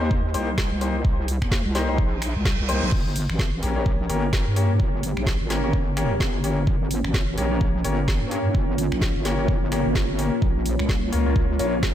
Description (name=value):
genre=bass house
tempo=128 BPM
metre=4/4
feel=swing 59% on 16ths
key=unclear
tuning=A4 = 444 Hz
part: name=bright concert grand piano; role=stabs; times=0.0-11.7 s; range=Bb3 to Db5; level=-28 LUFS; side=left 3 dB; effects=sidechain pumping, tape echo
part: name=wobble bass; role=bass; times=0.0-11.9 s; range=G1 to G2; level=-25 LUFS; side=equal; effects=chorus, overdrive, sidechain pumping
part: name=electronic kick drum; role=drums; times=0.1-11.9 s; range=none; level=-23 LUFS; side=equal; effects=none
part: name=garage drum kit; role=drums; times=0.3-11.9 s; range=crash cymbal, finger snaps, hi-hat, snare drum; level=-32 LUFS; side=equal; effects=none
part: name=reverse cymbal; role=sound effects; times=2.1-2.9 s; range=none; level=-34 LUFS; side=right 5 dB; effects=none
part: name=deep dark ambient pad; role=sustained chords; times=4.5-11.9 s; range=Bb3 to Db5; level=-29 LUFS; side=equal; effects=chorus, built-in reverb, sidechain pumping
room=light reverb, digital ambience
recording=none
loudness=-20 LUFS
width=side -11 dB against mid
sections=0.0-11.9 A section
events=reverse cymbal 2.1-2.9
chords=0.0 Cm7; 2.9 Gdim; 10.4 Bbm